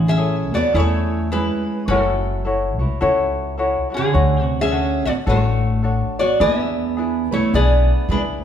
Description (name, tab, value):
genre	Hawaiian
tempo	106 BPM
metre	4/4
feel	swing 61% on 8ths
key	A major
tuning	A4 = 439 Hz
part	lap resonator guitar	melody	0.0-8.2 s	C#4 to E5	-22 LUFS	equal	none
part	picked steel-string acoustic guitar	second line	0.0-8.2 s	D3 to C#4	-22 LUFS	right 3 dB	none
part	tenor ukulele	accompaniment	0.0-8.4 s	C#4 to C#5	-22 LUFS	left 2 dB	none
part	upright bass	bass	0.0-8.4 s	F#1 to E2	-21 LUFS	left 1 dB	none
room	moderate recital hall reverb, RT60 1.4 s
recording	recorded in a church or concert hall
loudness	-16 LUFS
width	side -9 dB against mid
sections	0.0-8.4 A section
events	none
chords	0.0 Amaj7; 1.9 F#m7; 4.1 Dmaj7; 6.4 E7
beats	0.18 0.75 1.31 | 1.88 2.44 3.01 3.58 | 4.14 4.71 5.27 5.83 | 6.40 6.96 7.53 8.09